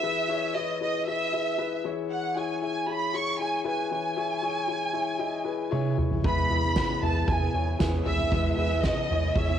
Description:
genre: piano-driven pop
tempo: 116 BPM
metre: 4/4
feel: straight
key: E major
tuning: A4 = 440 Hz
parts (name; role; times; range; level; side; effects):
- warm studio violin section; melody; 0.0-9.6 s; D#5 to C#6; -28 LUFS; right 2 dB; none
- dark baby grand piano; accompaniment; 0.0-9.6 s; E3 to E5; -31 LUFS; left 7 dB; cassette tape
- soft-mallet drum kit; drums; 5.7-9.5 s; kick drum, ride cymbal, snare drum, toms; -28 LUFS; right 1 dB; cassette tape
- fingerpicked plugged-in steel-string acoustic guitar; riff; 6.2-9.6 s; E3 to G#4; -34 LUFS; right 9 dB; cassette tape
- round analog bass; bass; 6.2-9.6 s; D#2 to E2; -28 LUFS; right 1 dB; none
- tambourine; percussion; 6.8-9.0 s; none; -49 LUFS; left 11 dB; none
room: light reverb, small room ambience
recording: home recording on cassette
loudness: -25 LUFS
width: side -9 dB against mid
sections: 0.0-9.6 A section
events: drum fill 5.7-6.2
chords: 0.0 E; 1.8 C#m/E; 6.2 E

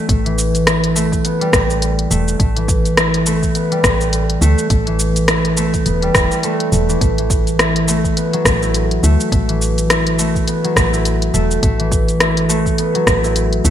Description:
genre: organic downtempo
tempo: 104 BPM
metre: 4/4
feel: swing 58% on 16ths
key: unclear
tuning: A4 = 438 Hz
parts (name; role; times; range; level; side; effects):
- concert harp; arpeggios; 0.0-13.7 s; E3 to E4; -17 LUFS; equal; ping-pong delay
- woody FM bass; bass; 0.1-13.7 s; E1 to D2; -18 LUFS; equal; sidechain pumping
- electronic kick drum; drums; 0.1-13.2 s; none; -19 LUFS; equal; none
- organic electronic drum kit; drums; 0.1-13.7 s; cabasa, hi-hat, rim click; -18 LUFS; equal; gated reverb
room: moderate plate reverb, RT60 2.5 s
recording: bright 1980s-style digital production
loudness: -13 LUFS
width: side -10 dB against mid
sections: 0.0-13.7 A section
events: none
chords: 0.0 A5; 7.0 B7(no3)

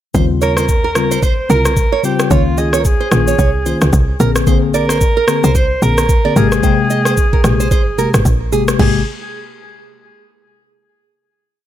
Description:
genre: afrobeats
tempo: 111 BPM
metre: 4/4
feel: swing 58% on 16ths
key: Ab major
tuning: A4 = 440 Hz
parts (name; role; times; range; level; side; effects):
- mellow tine electric piano; accompaniment; 0.1-9.0 s; C3 to G5; -17 LUFS; moving between left 8 dB and left 1 dB; auto-pan
- nylon-string guitar; riff; 0.1-9.0 s; Ab4 to Eb5; -21 LUFS; right 9 dB; none
- woody log drum bass; bass; 0.1-9.0 s; G1 to Eb2; -16 LUFS; equal; none
- afro-pop drum kit; drums; 0.1-8.9 s; crash cymbal, kick drum, rim click, shaker; -16 LUFS; equal; none
- warm alto saxophone; melody; 0.4-9.1 s; F4 to C5; -19 LUFS; right 1 dB; digital delay
room: little or no reverb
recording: none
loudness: -11 LUFS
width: side -12 dB against mid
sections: 0.1-8.8 verse; 8.8-11.0 final chord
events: none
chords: 0.1 Eb13; 2.3 Db69; 4.2 Bb9; 6.4 Abmaj9; 8.8 N.C.

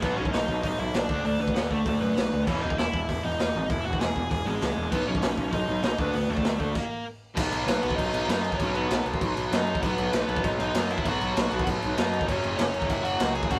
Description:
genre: punk rock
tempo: 196 BPM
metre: 4/4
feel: straight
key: unclear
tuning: A4 = 440 Hz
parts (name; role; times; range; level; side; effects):
- dark smooth lead guitar; melody; 0.0-13.6 s; G#3 to G#5; -33 LUFS; equal; overdrive
- raw garage guitar; riff; 0.0-13.6 s; E2 to D4; -36 LUFS; equal; overdrive
- tight distorted guitar; riff; 0.0-13.6 s; E2 to D4; -34 LUFS; equal; distortion
- fuzz picked electric bass; bass; 0.0-13.6 s; E1 to F#2; -34 LUFS; equal; overdrive
- raw garage drum kit; drums; 0.0-13.6 s; crash cymbal, hi-hat, kick drum, snare drum; -31 LUFS; equal; none
room: moderate studio reverb, RT60 0.6 s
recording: rough rehearsal-room recording, faint mains hum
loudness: -27 LUFS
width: mono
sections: 0.0-7.4 A section; 7.4-13.6 B section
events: stop 6.8-7.4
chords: 0.0 B; 1.1 D5; 2.5 E; 4.9 B; 6.0 D5; 6.8 N.C.; 7.4 B; 12.3 F#5

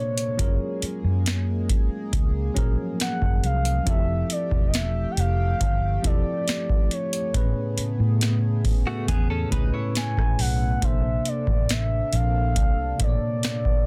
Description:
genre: contemporary R&B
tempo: 69 BPM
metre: 4/4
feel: straight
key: unclear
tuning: A4 = 440 Hz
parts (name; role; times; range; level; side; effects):
- gliding portamento lead; melody; 0.0-13.9 s; Db5 to G#5; -32 LUFS; equal; chorus, digital delay
- mellow tine electric piano; accompaniment; 0.0-13.9 s; A2 to D5; -32 LUFS; equal; none
- chorused pulse-width pad; sustained chords; 0.0-13.9 s; C3 to A4; -37 LUFS; equal; sidechain pumping
- booming analog drum machine; drums; 0.2-13.8 s; hi-hat, kick drum, rim click, snare drum; -26 LUFS; equal; none
- vintage muted fingered electric bass; bass; 0.4-13.2 s; E1 to A2; -27 LUFS; equal; none
- direct-recorded clean electric guitar; arpeggios; 8.9-10.8 s; A3 to C#5; -36 LUFS; equal; lush chorus, digital delay
room: little or no reverb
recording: dense, heavily limited modern master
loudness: -24 LUFS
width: mono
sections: 0.0-13.9 A section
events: none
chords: 0.4 Gbmaj9; 3.9 Fmaj9; 7.3 Amaj9; 10.8 Bbmaj9

